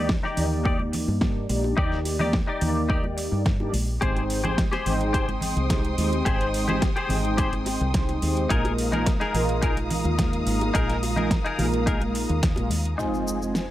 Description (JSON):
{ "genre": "nu-disco, nu disco", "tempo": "107 BPM", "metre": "4/4", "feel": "straight", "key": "unclear", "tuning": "A4 = 441 Hz", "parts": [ { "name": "mellow synth brass", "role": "accompaniment", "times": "0.0-13.6 s", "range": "Ab3 to G5", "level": "-28 LUFS", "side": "equal", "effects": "chorus, sidechain pumping, analog delay" }, { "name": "direct-recorded clean electric guitar", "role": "riff", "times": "0.0-13.4 s", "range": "Eb4 to D5", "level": "-30 LUFS", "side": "left 3 dB", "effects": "ensemble chorus, low-pass filter, analog delay" }, { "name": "deep dub fingered electric bass", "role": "bass", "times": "0.0-12.9 s", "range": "Ab1 to G2", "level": "-27 LUFS", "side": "equal", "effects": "none" }, { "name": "electronic kick drum", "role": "drums", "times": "0.1-12.5 s", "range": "none", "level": "-25 LUFS", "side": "equal", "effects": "overdrive" }, { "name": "pop drum kit", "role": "drums", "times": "0.1-13.7 s", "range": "hi-hat, shaker, snare drum", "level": "-31 LUFS", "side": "equal", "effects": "overdrive" }, { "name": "bongos and congas", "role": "percussion", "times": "0.1-12.8 s", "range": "none", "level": "-33 LUFS", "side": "right 1 dB", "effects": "none" }, { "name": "warm symphonic string section", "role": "sustained chords", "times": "4.0-13.7 s", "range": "F3 to Eb6", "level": "-34 LUFS", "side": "left 1 dB", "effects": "sidechain pumping, low-pass filter" }, { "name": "impact", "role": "sound effects", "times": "13.0-13.7 s", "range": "none", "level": "-34 LUFS", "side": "equal", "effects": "none" } ], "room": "little or no reverb", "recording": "none", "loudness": "-22 LUFS", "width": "side -14 dB against mid", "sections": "0.0-13.0 A section", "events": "impact 13.0-13.7", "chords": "0.0 Ebmaj7; 4.0 Abmaj7; 8.5 Bb7sus4; 13.0 Fm7", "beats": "0.09 0.65 1.22 | 1.78 2.34 2.90 3.46 | 4.02 4.58 5.14 5.70 | 6.26 6.82 7.38 7.94 | 8.51 9.06 9.63 10.19 | 10.75 11.31 11.87 12.43 | 12.99 13.55" }